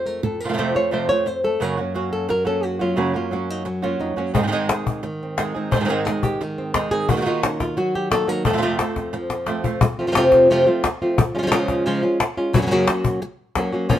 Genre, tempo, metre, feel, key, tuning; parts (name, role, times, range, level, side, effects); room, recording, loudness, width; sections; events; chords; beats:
flamenco; 176 BPM; 4/4; straight; A4 = 439 Hz
flamenco guitar; melody; 0.0-14.0 s; F2 to Db5; -20 LUFS; equal
flamenco guitar; stabs; 0.2-9.8 s; F2 to Ab4; -24 LUFS; right 3 dB
cajon; percussion; 4.3-14.0 s; -21 LUFS; left 3 dB
light reverb; band playing live in one room; -18 LUFS; side -11 dB against mid
0.0-9.8 A section; 9.8-14.0 B section
nylon-string guitar solo 0.0-9.8; drum fill 9.3-9.8
0.0 F; 1.6 Gb; 4.4 Ab; 7.1 Ebm; 8.5 F; 11.2 Db; 12.5 Gb
| 0.24 0.58 0.92 1.27 | 1.61 1.95 2.30 2.64 | 2.98 3.33 3.67 4.01 | 4.35 4.70 5.04 5.38 | 5.72 6.07 6.41 6.75 | 7.09 7.43 7.77 8.11 | 8.45 8.79 9.13 9.47 | 9.81 10.15 10.49 10.84 | 11.18 11.52 11.86 12.20 | 12.54 12.88 13.22 13.56 | 13.90